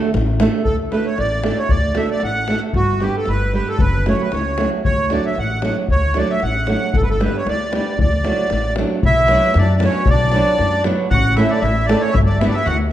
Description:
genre	balkan folk, Balkan wedding band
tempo	115 BPM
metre	2/4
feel	swing 53% on 16ths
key	D major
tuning	A4 = 440 Hz
part	flamenco guitar	accompaniment	0.0-12.6 s	F#3 to B4	-22 LUFS	right 4 dB	none
part	davul	percussion	0.0-12.9 s	none	-22 LUFS	left 2 dB	none
part	upright bass	bass	0.1-12.9 s	F#1 to F#2	-20 LUFS	equal	none
part	accordion	melody	0.6-12.8 s	F#4 to F#5	-20 LUFS	right 1 dB	light tremolo tuning
part	melodica	second line	9.1-12.8 s	C#4 to F#4	-26 LUFS	left 4 dB	none
room	moderate recital hall reverb, RT60 1.5 s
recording	dark, warm production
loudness	-15 LUFS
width	side -12 dB against mid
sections	0.7-9.0 A section; 9.0-12.9 B section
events	none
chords	0.0 D; 2.8 G; 3.8 F#m; 4.9 D; 6.9 G; 8.0 D; 9.0 Bm; 11.1 A; 12.1 G

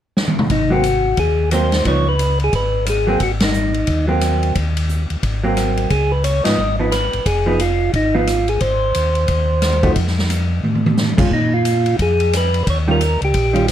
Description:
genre	soul jazz organ trio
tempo	178 BPM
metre	4/4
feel	swing 62% on 8ths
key	Ab mixolydian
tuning	A4 = 440 Hz
part	swinging big-band drum kit	drums	0.2-13.7 s	crash cymbal, hi-hat, kick drum, ride cymbal, rim click, snare drum, toms	-21 LUFS	equal	none
part	percussive tonewheel organ	melody	0.5-13.7 s	Eb4 to Eb5	-18 LUFS	equal	slow rotary speaker
part	mellow tonewheel organ	bass	0.5-13.7 s	F1 to Bb2	-19 LUFS	equal	chorus vibrato, slow rotary speaker
part	vintage hollow-body jazz guitar	accompaniment	0.7-13.7 s	Eb3 to Gb4	-20 LUFS	right 2 dB	none
room	light reverb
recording	none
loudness	-15 LUFS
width	side -10 dB against mid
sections	0.5-13.7 A section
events	drum fill 0.2-0.5, 10.6-11.0; band accent 3.4, 6.4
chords	0.0 N.C.; 0.5 Ab9; 1.9 Db9; 3.2 Ab9; 4.6 N.C.; 5.2 Ab9; 5.9 Db9; 8.6 Ab; 10.0 F; 11.3 Bb5; 12.7 Eb9

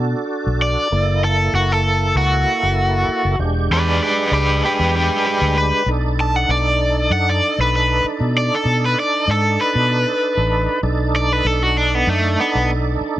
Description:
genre	straight-eighth soul blues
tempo	97 BPM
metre	4/4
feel	swing 54% on 16ths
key	unclear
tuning	A4 = 440 Hz
part	tonewheel organ	accompaniment	0.0-13.2 s	G#3 to A4	-23 LUFS	right 4 dB	slow rotary speaker, overdrive, chorus vibrato
part	vintage muted fingered electric bass	bass	0.0-13.2 s	E1 to B2	-19 LUFS	left 1 dB	none
part	cranked stack guitar	melody	0.6-12.7 s	A3 to A5	-18 LUFS	left 1 dB	overdrive, tremolo
room	light reverb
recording	none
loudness	-15 LUFS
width	side -14 dB against mid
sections	0.0-10.8 A section; 10.8-13.2 A section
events	overdriven electric guitar solo 0.0-10.8, 10.8-13.2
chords	0.0 Bm7; 0.9 F#7#9; 3.4 E7#9; 5.9 B7#9

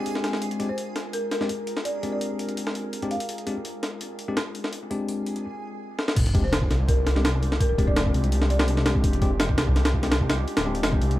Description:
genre	drum and bass, jungle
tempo	167 BPM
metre	4/4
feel	straight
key	F dorian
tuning	A4 = 440 Hz
part	warbly tape-like pad	sustained chords	0.0-11.2 s	Ab3 to G5	-36 LUFS	equal	chorus, built-in reverb
part	bell-like tine electric piano	stabs	0.0-11.2 s	Ab3 to G4	-31 LUFS	left 2 dB	vintage 12-bit sampler grit, dub echo
part	backwards swelling texture	texture	0.0-5.4 s	Ab4	-40 LUFS	right 2 dB	built-in reverb
part	breakbeat sampler-style drum kit	drums	0.1-11.2 s	crash cymbal, hi-hat, kick drum, snare drum	-25 LUFS	equal	high-pass filter on hats, high-pass filter on snare, high-pass filter on cymbals, high-pass filter on kick
part	folk marimba with medium mallets	melody	0.7-3.4, 6.4-8.8 s	Bb4 to F5	-32 LUFS	equal	vintage 12-bit sampler grit, dub echo
part	detuned saw bass	bass	6.2-11.2 s	D1 to C2	-24 LUFS	equal	none
part	sub drop	sound effects	6.2-7.6 s	none	-31 LUFS	equal	none
room	little or no reverb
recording	vinyl crackle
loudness	-22 LUFS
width	side -15 dB against mid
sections	0.0-6.2 A section; 6.2-11.2 B section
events	drum fill 6.0; drop 6.2-11.2; impact 6.2-7.6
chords	0.0 Fm69

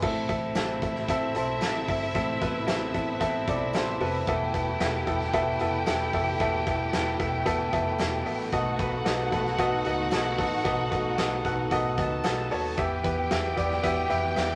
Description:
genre	piano-driven pop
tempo	113 BPM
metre	4/4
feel	straight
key	A minor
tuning	A4 = 440 Hz
part	warm studio violin section	second line	0.0-14.6 s	E4 to A5	-35 LUFS	equal	none
part	bright upright piano	accompaniment	0.0-14.6 s	A2 to F#5	-30 LUFS	equal	none
part	warm studio string section	sustained chords	0.0-14.6 s	B2 to G4	-38 LUFS	equal	none
part	fretless electric bass	bass	0.0-14.6 s	E1 to F2	-37 LUFS	equal	none
part	huge arena drum kit	drums	0.0-14.5 s	crash cymbal, hi-hat, kick drum, snare drum	-35 LUFS	equal	none
part	tambourine	percussion	0.6-14.5 s	none	-53 LUFS	equal	none
room	moderate studio reverb, RT60 0.6 s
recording	none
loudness	-27 LUFS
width	mono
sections	0.0-14.6 A section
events	none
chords	0.0 Am; 4.3 Esus4; 8.5 B7; 12.8 Em

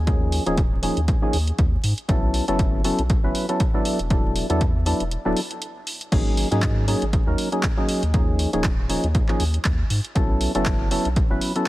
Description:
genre	deep house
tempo	119 BPM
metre	4/4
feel	swing 56% on 16ths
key	unclear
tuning	A4 = 440 Hz
part	round analog bass	bass	0.0-11.4 s	D1 to G#2	-24 LUFS	equal	sidechain pumping
part	percussive organ stab	stabs	0.1-11.7 s	E#3 to B4	-24 LUFS	equal	wide subtle chorus, sidechain pumping, dub echo
part	electronic kick drum	drums	0.1-11.3 s	none	-21 LUFS	equal	none
part	punchy analog drum machine	drums	0.1-11.6 s	crash cymbal, handclaps, hi-hat	-29 LUFS	right 1 dB	none
room	little or no reverb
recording	vinyl crackle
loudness	-19 LUFS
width	side -17 dB against mid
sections	0.0-11.7 A section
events	break 5.1-6.1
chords	0.1 D#9sus4; 2.1 B9sus4; 3.9 E9sus4; 6.1 G#9sus4; 8.1 D#9sus4; 10.2 B9sus4

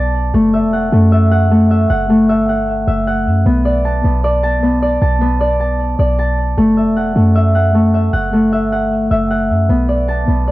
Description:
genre	hip hop, trap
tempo	154 BPM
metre	4/4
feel	half-time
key	F# phrygian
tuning	A4 = 440 Hz
part	Celtic harp	arpeggios	0.0-10.5 s	A3 to A5	-14 LUFS	equal	analog delay
part	clean 808-style bass	bass	0.0-10.5 s	E1 to F#2	-16 LUFS	equal	none
room	light reverb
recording	home recording on cassette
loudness	-12 LUFS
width	side -17 dB against mid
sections	0.0-6.6 A section; 6.6-10.5 B section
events	none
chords	0.3 F#m7; 3.5 Bm7; 6.6 F#m7; 9.7 Bm7

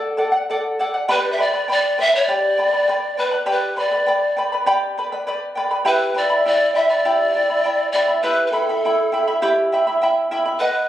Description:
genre	andean folk, Andean ensemble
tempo	101 BPM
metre	4/4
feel	straight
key	E minor pentatonic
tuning	A4 = 440 Hz
part	charango	accompaniment	0.0-10.9 s	E4 to B5	-19 LUFS	equal	none
part	breathy mellow pan flute	melody	1.1-10.9 s	A4 to E5	-18 LUFS	equal	none
room	moderate studio reverb, RT60 0.5 s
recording	recorded on a phone in the room, club reverb, compression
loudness	-16 LUFS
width	side -12 dB against mid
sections	0.0-10.9 A section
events	none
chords	0.0 D; 1.1 G; 5.9 Em

